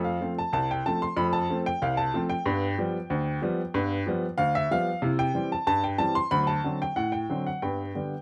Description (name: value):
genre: ragtime piano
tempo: 93 BPM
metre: 2/4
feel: straight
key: unclear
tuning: A4 = 442 Hz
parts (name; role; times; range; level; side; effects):
- clear upright piano; solo; 0.0-8.2 s; C2 to C6; -27 LUFS; equal; none
room: light reverb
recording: close, detailed microphones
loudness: -27 LUFS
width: mono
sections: 0.0-8.2 A section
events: none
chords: 0.0 F; 2.5 G7; 5.0 C; 6.3 D7; 7.6 G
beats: 0.53 | 1.17 1.81 | 2.46 3.10 | 3.74 4.38 | 5.02 5.66 | 6.31 6.96 | 7.61